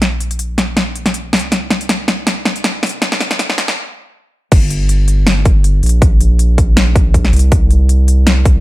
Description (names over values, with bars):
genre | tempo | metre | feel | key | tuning
future bass | 160 BPM | 4/4 | swing 55% on 16ths, half-time | unclear | A4 = 441 Hz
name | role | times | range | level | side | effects
saturated sub bass | bass | 0.0-8.6 s | F1 to C2 | -13 LUFS | equal | sidechain pumping
big-room dance drum kit | drums | 0.0-8.5 s | crash cymbal, hi-hat, snare drum | -15 LUFS | equal | overdrive, small room ambience
electronic kick drum | drums | 4.5-8.5 s | none | -11 LUFS | equal | overdrive, small room ambience
room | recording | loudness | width
digital ambience | high-pass filter | -11 LUFS | side -18 dB against mid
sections
0.0-4.5 A section; 4.5-8.6 B section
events
build-up 0.0-4.5; drum fill 0.0-3.8; filter sweep 0.0-4.5; stop 3.8-4.5; drop 4.5-8.6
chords
none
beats
| 0.02 0.39 0.77 1.14 | 1.52 1.89 2.27 2.64 | 3.02 3.39 3.77 4.14 | 4.52 4.89 5.27 5.64 | 6.02 6.39 6.77 7.14 | 7.52 7.89 8.27